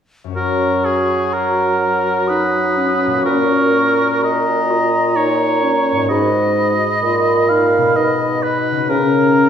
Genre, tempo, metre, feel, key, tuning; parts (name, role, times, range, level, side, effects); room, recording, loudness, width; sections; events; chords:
classical, slow romantic movement for symphony orchestra; 63 BPM; 3/4; rubato; F# major; A4 = 440 Hz
concert harp; arpeggios; 0.2-9.5 s; F#2 to C#5; -22 LUFS; left 4 dB
mellow hollow silver concert flute; second line; 0.4-9.5 s; A#5 to D#6; -21 LUFS; left 1 dB
warm clarinet; second line; 0.4-9.5 s; C#4 to F#4; -23 LUFS; left 2 dB
warm oboe; second line; 0.4-9.5 s; G#4 to E#5; -18 LUFS; right 1 dB
dark bassoon; accompaniment; 0.4-9.5 s; G#2 to F#3; -18 LUFS; right 2 dB
wet recital hall reverb, RT60 1.4 s; minimal, uncompressed stereo recording; -13 LUFS; side -8 dB against mid
0.4-9.5 A section
0.4 F#; 3.2 F#/A#; 6.1 G#m7; 8.0 G#m/B; 8.9 F#/C#